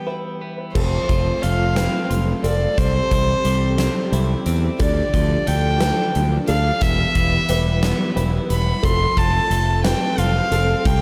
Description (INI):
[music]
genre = post-rock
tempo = 59 BPM (dotted quarters)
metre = 6/8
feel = straight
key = F lydian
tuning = A4 = 440 Hz
[part]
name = warm violin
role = melody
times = 0.0-11.0 s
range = C5 to C6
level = -25 LUFS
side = equal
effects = analog delay
[part]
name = felt-muted upright piano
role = arpeggios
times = 0.0-11.0 s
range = A4 to C5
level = -33 LUFS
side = equal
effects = lush chorus, analog delay
[part]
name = twelve-string electric guitar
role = arpeggios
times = 0.0-11.0 s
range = E2 to F4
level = -31 LUFS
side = equal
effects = analog delay
[part]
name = dark chamber string section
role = sustained chords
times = 0.8-11.0 s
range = F3 to B4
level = -31 LUFS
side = equal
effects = none
[part]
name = growling fingered electric bass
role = bass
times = 0.8-11.0 s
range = E1 to E2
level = -22 LUFS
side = equal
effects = overdrive
[part]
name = huge arena drum kit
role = drums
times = 0.8-11.0 s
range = crash cymbal, hi-hat, kick drum, snare drum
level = -26 LUFS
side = equal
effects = none
[sound]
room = moderate lush hall reverb, RT60 2.2 s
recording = dreamy mix soaked in reverb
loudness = -19 LUFS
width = mono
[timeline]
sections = 0.8-11.0 A section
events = none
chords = 0.0 Em; 0.8 F; 2.8 C; 4.8 Dm; 6.8 Em; 8.8 F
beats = | 0.76 1.77 | 2.78 3.79 | 4.80 5.81 | 6.82 7.83 | 8.84 9.85 | 10.86